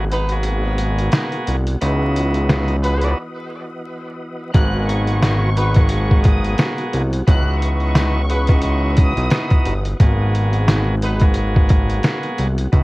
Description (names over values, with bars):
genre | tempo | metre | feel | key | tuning
hip hop, boom-bap hip-hop | 88 BPM | 4/4 | swing 56% on 16ths | G# minor | A4 = 441 Hz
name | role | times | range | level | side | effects
bright tonewheel organ | accompaniment | 0.0-12.8 s | A#3 to G#4 | -24 LUFS | right 1 dB | overdrive, stopped rotary speaker, cassette tape, high-pass filter, low-pass filter
tonewheel organ | sustained chords | 0.0-12.8 s | B2 to D#5 | -30 LUFS | equal | none
fat analog bass | bass | 0.0-12.8 s | G1 to C#2 | -18 LUFS | equal | none
warm horn section | stabs | 0.1-11.2 s | D#4 to B4 | -26 LUFS | equal | high-pass filter, low-pass filter, digital delay
trip hop sampler-style drum kit | drums | 0.1-12.8 s | hi-hat, kick drum, snare drum | -16 LUFS | equal | none
rich studio violin section | melody | 4.5-9.5 s | C#6 to F#6 | -29 LUFS | left 1 dB | high-pass filter, low-pass filter, digital delay
room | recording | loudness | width
little or no reverb | worn, warbling old tape, cassette tape, vinyl crackle, warbly pitch drift | -15 LUFS | side -21 dB against mid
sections
0.0-12.8 A section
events
break 0.0-4.5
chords
0.0 G#m9; 1.8 C#m11; 4.5 G#m9; 7.3 C#m11; 10.0 G#m9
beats
0.46 1.14 | 1.82 2.50 3.18 3.87 | 4.55 5.23 5.91 6.59 | 7.27 7.96 8.64 9.32 | 10.00 10.68 11.37 12.05 | 12.73